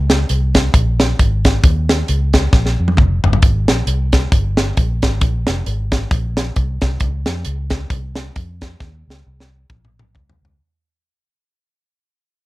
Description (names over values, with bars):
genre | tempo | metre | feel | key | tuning
uptempo gospel | 134 BPM | 4/4 | swing 58% on 8ths | Ab major | A4 = 439 Hz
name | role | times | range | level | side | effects
vintage muted fingered electric bass | bass | 0.0-10.6 s | F1 to F2 | -18 LUFS | equal | none
tight funk drum kit | drums | 0.1-10.6 s | hi-hat, kick drum, snare drum, toms | -15 LUFS | equal | none
room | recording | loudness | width
little or no reverb | dark, warm production | -14 LUFS | side -19 dB against mid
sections
0.0-3.4 A section; 3.4-10.6 B section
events
drum fill 2.5-3.4, 8.8-10.6; fade-out 3.4-10.6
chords
none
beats
0.30 0.74 1.19 | 1.64 2.08 2.53 2.98 | 3.43 3.87 4.32 4.77 | 5.22 5.67 6.11 6.56 | 7.01 7.46 7.91 8.36 | 8.81 9.26 9.71 10.15